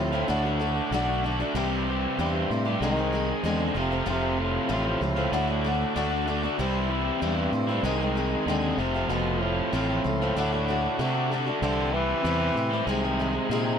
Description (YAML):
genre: rock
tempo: 95 BPM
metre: 4/4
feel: straight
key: C major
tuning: A4 = 440 Hz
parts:
  - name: warm French horn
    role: melody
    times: 0.0-13.8 s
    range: G2 to E3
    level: -30 LUFS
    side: equal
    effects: none
  - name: picked twelve-string acoustic guitar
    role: accompaniment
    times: 0.0-13.8 s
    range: F2 to Ab4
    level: -31 LUFS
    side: left 4 dB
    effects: none
  - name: tonewheel organ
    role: sustained chords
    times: 0.0-13.8 s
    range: G4 to D6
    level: -36 LUFS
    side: right 1 dB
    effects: chorus vibrato, stopped rotary speaker
  - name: crunchy overdriven guitar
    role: riff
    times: 0.0-13.8 s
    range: F2 to Ab4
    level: -28 LUFS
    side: right 1 dB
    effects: none
  - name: fingered electric bass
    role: bass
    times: 0.0-13.7 s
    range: F1 to C3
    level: -30 LUFS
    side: right 1 dB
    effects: none
room: light reverb, small room ambience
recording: none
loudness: -24 LUFS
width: side -7 dB against mid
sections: 0.0-13.8 A section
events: none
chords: 0.3 D; 1.5 C; 2.8 Ab/C; 3.8 F; 5.3 D; 6.6 C; 7.8 Ab/C; 8.8 F; 10.4 D; 11.6 C; 12.9 Ab/C